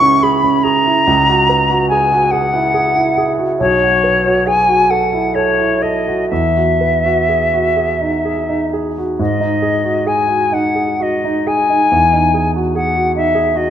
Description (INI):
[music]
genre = classical, impressionist duo for flute and grand piano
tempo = 40-50 BPM (dotted quarters)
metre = 6/8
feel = rubato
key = E lydian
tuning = A4 = 440 Hz
[part]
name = silver concert flute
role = melody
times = 0.0-13.7 s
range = C#5 to C#6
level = -14 LUFS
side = left 2 dB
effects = none
[part]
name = warm concert grand piano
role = accompaniment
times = 0.0-13.7 s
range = B1 to B4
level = -16 LUFS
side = right 2 dB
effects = none
[sound]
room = moderate recital hall reverb, RT60 1.7 s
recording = none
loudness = -12 LUFS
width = side -9 dB against mid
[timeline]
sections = 0.0-9.2 A section; 9.2-13.7 B section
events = none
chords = 0.0 E69/C#; 3.6 B9sus4; 6.3 Emaj9; 9.2 G#5; 11.9 Emaj9